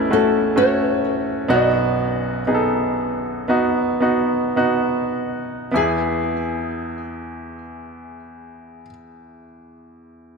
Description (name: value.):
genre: pop.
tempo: 50-67 BPM.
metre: 4/4.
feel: straight.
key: E major.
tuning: A4 = 440 Hz.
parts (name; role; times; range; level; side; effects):
nylon-string guitar; melody; 0.0-8.9 s; A4 to G#5; -21 LUFS; left 2 dB; wide subtle chorus, ping-pong delay.
bright baby grand piano; accompaniment; 0.0-10.4 s; A1 to A4; -20 LUFS; right 1 dB; none.
room: wet plate reverb, RT60 3.1 s.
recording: dreamy mix soaked in reverb.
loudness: -18 LUFS.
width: side -4 dB against mid.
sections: 0.0-5.7 A section; 5.7-10.4 B section.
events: slowing down 0.0-5.7.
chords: 0.0 A; 1.5 B; 5.7 E.